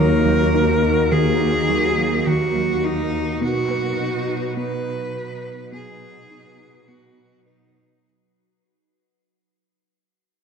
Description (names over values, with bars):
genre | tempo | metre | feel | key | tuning
cinematic | 104 BPM | 4/4 | straight | unclear | A4 = 440 Hz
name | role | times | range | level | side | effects
clear cello | melody | 0.0-8.0 s | Eb4 to B4 | -23 LUFS | equal | ping-pong delay
glassy FM pad | sustained chords | 0.0-8.0 s | F#3 to B4 | -24 LUFS | left 3 dB | ensemble chorus, built-in reverb
glassy wavetable pluck | arpeggios | 0.0-7.9 s | Eb3 to B4 | -25 LUFS | right 1 dB | chorus
rich studio cello section | bass | 0.0-7.8 s | Eb2 to B2 | -24 LUFS | right 4 dB | none
dark baby grand piano | texture | 0.0-8.1 s | Ab4 to Db6 | -35 LUFS | left 5 dB | none
room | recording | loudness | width
wet scoring stage reverb, RT60 1.6 s | none | -18 LUFS | side -6 dB against mid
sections
0.0-8.0 A section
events
fade-out 0.0-8.0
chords
0.0 Ebm; 3.4 B